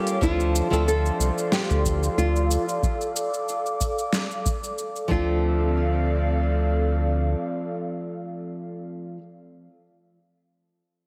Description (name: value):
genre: sunset chillout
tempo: 92 BPM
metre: 4/4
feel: swing 54% on 16ths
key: D minor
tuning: A4 = 437 Hz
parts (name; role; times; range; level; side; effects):
- flamenco guitar; accompaniment; 0.0-9.2 s; F3 to A4; -32 LUFS; equal; tape echo
- airy breathy pad; sustained chords; 0.0-8.8 s; C4 to D6; -32 LUFS; equal; chorus
- smooth R&B drum kit; drums; 0.1-5.1 s; hi-hat, shaker, snare drum; -32 LUFS; equal; studio reverb
- nylon-string guitar; melody; 0.2-9.2 s; F4 to A4; -30 LUFS; equal; delay
- round analog bass; bass; 0.2-7.3 s; C2 to D2; -25 LUFS; equal; none
- electronic kick drum; drums; 0.2-5.2 s; none; -28 LUFS; equal; studio reverb
room: moderate concert hall reverb, RT60 2.4 s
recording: heavily compressed radio sound, multiband compression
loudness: -24 LUFS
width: mono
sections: 0.2-5.4 A section; 5.4-8.0 B section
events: filter sweep on analog synth pad 0.2-5.4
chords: 0.2 Dm7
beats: | 0.22 0.87 1.52 2.17 | 2.83 3.48 4.13 4.78 | 5.43 6.09 6.74 7.39